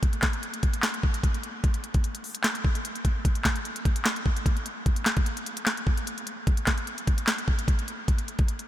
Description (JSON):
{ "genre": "hip hop", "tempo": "149 BPM", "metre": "4/4", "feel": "half-time", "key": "none", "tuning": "none", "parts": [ { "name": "trap drum kit", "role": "drums", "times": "0.0-8.7 s", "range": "handclaps, hi-hat, kick drum, snare drum", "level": "-24 LUFS", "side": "equal", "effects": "none" } ], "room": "light reverb, digital ambience", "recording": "none", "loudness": "-24 LUFS", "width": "side -13 dB against mid", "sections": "0.0-8.7 A section", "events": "none", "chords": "none", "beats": "| 0.03 0.43 0.83 1.24 | 1.64 2.04 2.44 2.85 | 3.25 3.65 4.05 4.46 | 4.86 5.26 5.67 6.07 | 6.47 6.87 7.28 7.68 | 8.08 8.48" }